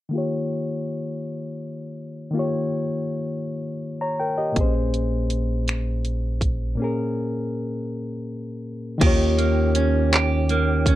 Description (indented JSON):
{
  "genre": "slow six-eight R&B",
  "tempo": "54 BPM (dotted quarters)",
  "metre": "6/8",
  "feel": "straight",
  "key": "unclear",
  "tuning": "A4 = 437 Hz",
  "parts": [
    { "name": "reed electric piano", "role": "accompaniment", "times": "0.1-11.0 s", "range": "Bb2 to Bb5", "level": "-25 LUFS", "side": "left 2 dB", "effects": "overdrive, low-pass filter" },
    { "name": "deep dub fingered electric bass", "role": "bass", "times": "4.6-11.0 s", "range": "Bb1 to Eb2", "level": "-23 LUFS", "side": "equal", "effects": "none" },
    { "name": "pop drum kit", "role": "drums", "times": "4.6-11.0 s", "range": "crash cymbal, finger snaps, handclaps, hi-hat, kick drum", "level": "-22 LUFS", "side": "equal", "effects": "none" },
    { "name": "clean electric guitar", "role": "second line", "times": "9.0-11.0 s", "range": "Eb3 to G4", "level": "-24 LUFS", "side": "right 5 dB", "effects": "none" },
    { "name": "mellow tonewheel organ", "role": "sustained chords", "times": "9.0-11.0 s", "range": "Eb3 to G4", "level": "-29 LUFS", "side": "right 2 dB", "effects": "chorus vibrato, slow rotary speaker" }
  ],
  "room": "little or no reverb",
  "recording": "dark, warm production",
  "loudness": "-21 LUFS",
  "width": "side -14 dB against mid",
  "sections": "0.1-9.0 A section; 9.0-11.0 B section",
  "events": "filter sweep on reed electric piano 0.1-9.0; break 6.8-9.0",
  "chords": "0.1 Eb7; 4.6 Bbm9; 9.0 Eb7"
}